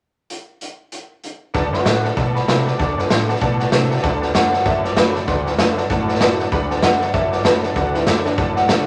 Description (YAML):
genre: rockabilly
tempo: 193 BPM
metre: 4/4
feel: swing 60% on 8ths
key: D mixolydian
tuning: A4 = 440 Hz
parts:
  - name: raw garage drum kit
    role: drums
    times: 0.3-8.8 s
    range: hi-hat, kick drum, snare drum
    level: -21 LUFS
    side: equal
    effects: none
  - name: picked steel-string acoustic guitar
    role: accompaniment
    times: 1.5-8.9 s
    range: A2 to F#4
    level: -28 LUFS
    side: equal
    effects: none
  - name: tack piano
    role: accompaniment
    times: 1.5-8.8 s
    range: D5 to C6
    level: -27 LUFS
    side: equal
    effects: none
  - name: gritty driven synth bass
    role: bass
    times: 1.5-8.9 s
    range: F#1 to C3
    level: -25 LUFS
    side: equal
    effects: distortion
  - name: electric guitar through a small old amp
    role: melody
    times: 1.7-8.9 s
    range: D4 to F#5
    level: -25 LUFS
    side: equal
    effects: none
room: moderate large studio reverb, RT60 1.4 s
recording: none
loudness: -18 LUFS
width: mono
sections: 0.3-1.5 A section; 1.5-4.0 B section; 4.0-8.9 C section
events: honky-tonk piano fill 3.6-4.0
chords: 0.3 N.C.; 1.5 D